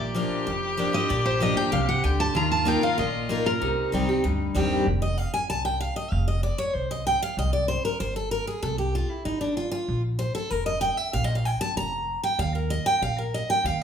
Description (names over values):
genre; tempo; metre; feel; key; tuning
bluegrass; 191 BPM; 4/4; straight; unclear; A4 = 440 Hz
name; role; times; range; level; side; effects
picked steel-string acoustic guitar; melody; 0.0-3.9 s; Bb4 to Bb5; -26 LUFS; right 1 dB; none
clear fiddle; second line; 0.0-4.7 s; Eb4 to G4; -30 LUFS; left 2 dB; none
picked steel-string acoustic guitar; accompaniment; 0.0-13.8 s; F2 to Bb5; -26 LUFS; equal; none
upright bass; bass; 0.0-13.8 s; F1 to Eb2; -29 LUFS; equal; none
room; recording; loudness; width
moderate large studio reverb, RT60 0.8 s; band playing live in one room; -23 LUFS; side -8 dB against mid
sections
0.0-4.9 A section; 4.9-13.8 B section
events
steel-string acoustic guitar solo 4.9-13.8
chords
0.0 Bb; 2.4 Ebsus2; 3.6 Cm; 4.9 F5; 7.4 C5; 9.9 Bb5; 12.4 Eb5